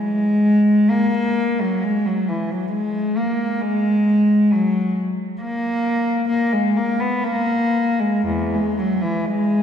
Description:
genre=classical, free, expressive piece for unaccompanied cello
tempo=53-70 BPM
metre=3/4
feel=rubato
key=unclear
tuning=A4 = 441 Hz
part: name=warm cello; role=solo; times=0.0-9.6 s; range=E2 to B3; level=-17 LUFS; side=equal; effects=none
room=wet church reverb, RT60 2.7 s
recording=dark, warm production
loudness=-17 LUFS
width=side -8 dB against mid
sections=0.0-9.6 A section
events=none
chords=none

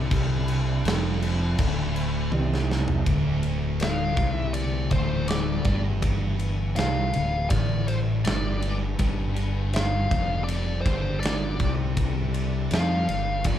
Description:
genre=stoner and doom metal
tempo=81 BPM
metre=4/4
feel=straight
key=D minor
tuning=A4 = 439 Hz
part: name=organ-like drone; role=sustained chords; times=0.0-13.6 s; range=D3 to E5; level=-38 LUFS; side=left 1 dB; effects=none
part: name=thick fuzz guitar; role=riff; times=0.0-13.6 s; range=D2 to F3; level=-30 LUFS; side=left 6 dB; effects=distortion
part: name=thick fuzz guitar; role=riff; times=0.0-13.6 s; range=D2 to F3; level=-30 LUFS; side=right 6 dB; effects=distortion
part: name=modern bright fingered electric bass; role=bass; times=0.0-13.6 s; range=D1 to F2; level=-28 LUFS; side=equal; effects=overdrive
part: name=big rock drum kit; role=drums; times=0.1-13.6 s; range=crash cymbal, kick drum, ride cymbal, snare drum, toms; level=-28 LUFS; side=equal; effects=none
part: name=fuzz lead guitar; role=melody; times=3.8-13.6 s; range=C5 to F5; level=-30 LUFS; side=left 2 dB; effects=wah, distortion
room=moderate large studio reverb, RT60 0.9 s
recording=band playing live in one room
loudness=-22 LUFS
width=side -10 dB against mid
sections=0.0-3.1 A section; 3.1-13.6 B section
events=drum fill 2.3-3.1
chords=0.0 Dm; 9.0 G5

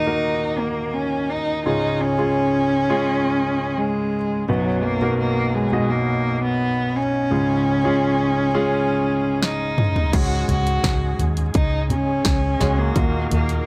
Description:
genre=piano-driven pop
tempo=85 BPM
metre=4/4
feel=straight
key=unclear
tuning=A4 = 439 Hz
part: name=rich cello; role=melody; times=0.0-13.6 s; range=F#3 to Gb4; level=-24 LUFS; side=equal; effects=none
part: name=clear grand piano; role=accompaniment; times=0.0-13.7 s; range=B1 to D#5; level=-26 LUFS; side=equal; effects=none
part: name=house drum kit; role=drums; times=9.4-13.7 s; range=crash cymbal, hi-hat, kick drum, snare drum, toms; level=-24 LUFS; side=equal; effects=none
part: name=bright tonewheel organ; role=sustained chords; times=10.1-13.7 s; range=Eb3 to F5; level=-36 LUFS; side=equal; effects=overdrive, fast rotary speaker
part: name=vintage muted fingered electric bass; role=bass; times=10.1-13.6 s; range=Db2 to Db3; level=-24 LUFS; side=equal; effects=none
room=light reverb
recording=none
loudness=-21 LUFS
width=mono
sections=0.0-10.1 A section; 10.1-13.7 B section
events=drum fill 9.4-10.1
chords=0.0 Ebm; 1.7 Db; 4.5 B; 7.3 Db; 10.1 Dbsus4; 13.0 Ebmadd9

